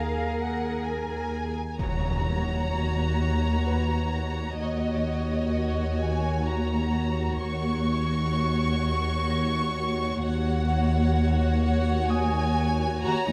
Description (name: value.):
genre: cinematic, suspense film score.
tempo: 64 BPM.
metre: 3/4.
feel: straight.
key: Eb minor.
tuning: A4 = 442 Hz.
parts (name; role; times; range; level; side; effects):
warm symphonic violin section; melody; 0.0-13.3 s; Eb5 to Db6; -34 LUFS; equal; none.
warm symphonic violin section; second line; 0.0-13.3 s; Eb4 to Db5; -35 LUFS; equal; none.
rich symphonic double bass section; bass; 0.0-13.1 s; Eb2; -30 LUFS; equal; none.
warm symphonic cello section; bass; 0.0-13.3 s; Eb2 to Bb4; -32 LUFS; equal; none.
concert harp; texture; 0.0-13.3 s; Cb5 to Bb6; -43 LUFS; equal; none.
impact; sound effects; 1.8-4.6 s; none; -36 LUFS; equal; none.
room: moderate concert hall reverb, RT60 2.1 s.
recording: none.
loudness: -26 LUFS.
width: mono.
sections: 0.0-1.8 A section; 1.8-13.3 B section.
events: impact 1.8-4.6.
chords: 0.0 Bb5/Eb; 1.8 Ebm7.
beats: 0.86 | 1.79 2.73 3.67 | 4.61 5.54 6.48 | 7.42 8.36 9.29 | 10.23 11.17 12.11 | 13.04.